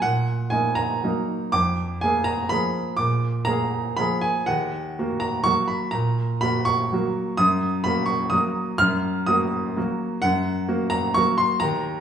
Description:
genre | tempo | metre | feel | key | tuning
classical, piano waltz | 116-137 BPM | 3/4 | rubato | Eb minor | A4 = 441 Hz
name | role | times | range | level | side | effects
clear baby grand piano | solo | 0.0-12.0 s | Eb2 to F6 | -20 LUFS | right 1 dB | none
room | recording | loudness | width
wet recital hall reverb, RT60 1.3 s | studio reverb | -20 LUFS | side -8 dB against mid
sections
0.0-12.0 A section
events
none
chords
0.0 Ebm; 1.5 Bb7/F; 4.5 Ebm; 7.4 Ebm/Gb

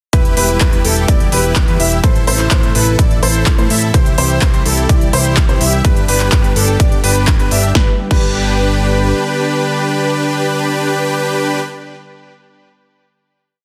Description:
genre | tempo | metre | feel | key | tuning
EDM, festival progressive house | 126 BPM | 4/4 | straight | G major | A4 = 440 Hz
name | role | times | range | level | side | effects
lush unison pad | sustained chords | 0.1-11.2 s | C3 to G4 | -25 LUFS | equal | chorus, sidechain pumping
warm grand piano | arpeggios | 0.1-11.6 s | A4 to E5 | -24 LUFS | equal | sidechain pumping, delay
dense compressed supersaw | riff | 0.1-11.6 s | D4 to E5 | -20 LUFS | equal | sidechain pumping, delay
fat analog bass | bass | 0.1-9.1 s | E1 to A2 | -19 LUFS | equal | sidechain pumping
big-room dance drum kit | drums | 0.1-8.3 s | crash cymbal, handclaps, hi-hat, snare drum | -21 LUFS | equal | none
electronic kick drum | drums | 0.1-8.3 s | none | -15 LUFS | equal | none
room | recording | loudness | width
little or no reverb | dense, heavily limited modern master | -13 LUFS | mono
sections
0.1-7.8 drop; 7.8-11.6 final chord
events
drop 0.1-7.8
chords
0.1 Em; 2.0 Am; 3.9 C; 5.8 G

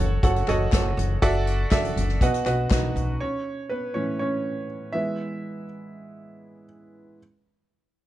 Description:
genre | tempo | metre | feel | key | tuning
piano-driven pop | 121 BPM | 4/4 | straight | E major | A4 = 439 Hz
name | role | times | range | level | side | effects
clear grand piano | accompaniment | 0.0-7.2 s | A2 to F#5 | -26 LUFS | right 2 dB | none
upright bass | bass | 0.0-3.2 s | F#1 to B1 | -26 LUFS | equal | none
unplugged drum kit | drums | 0.2-3.1 s | hi-hat, kick drum, snare drum, toms | -24 LUFS | left 1 dB | none
group handclap | percussion | 0.5-2.8 s | none | -39 LUFS | left 17 dB | none
room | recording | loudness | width
small room ambience | none | -22 LUFS | side -14 dB against mid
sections
0.0-3.2 A section; 3.2-7.2 B section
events
grand piano solo 3.2-7.2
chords
0.0 F#m; 1.2 Dadd9/F#; 2.2 B; 3.2 A; 4.9 E

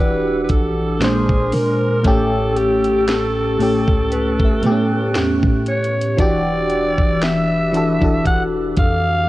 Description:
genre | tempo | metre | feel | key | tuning
contemporary R&B | 58 BPM | 4/4 | swing 54% on 16ths | E dorian | A4 = 440 Hz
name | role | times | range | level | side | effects
growling alto saxophone | melody | 0.0-9.3 s | G4 to F#5 | -21 LUFS | equal | cassette tape
FM electric piano | accompaniment | 0.0-9.3 s | A2 to B#4 | -18 LUFS | equal | chorus, phaser, cassette tape
breathy small flute group | sustained chords | 0.0-9.3 s | E4 to F#6 | -30 LUFS | right 4 dB | cassette tape
warm 808-style bass | bass | 0.0-9.3 s | E1 to A#2 | -25 LUFS | equal | none
glassy synth bell | texture | 0.0-6.9 s | B4 to E5 | -33 LUFS | equal | chorus, cassette tape, analog delay
trap drum kit | drums | 0.5-9.0 s | hi-hat, kick drum, snare drum | -19 LUFS | equal | cassette tape
room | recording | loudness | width
light reverb | home recording on cassette | -15 LUFS | side -17 dB against mid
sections
0.0-9.3 A section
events
none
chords
0.0 Em9; 1.0 A#9; 2.0 A7; 6.2 Em9

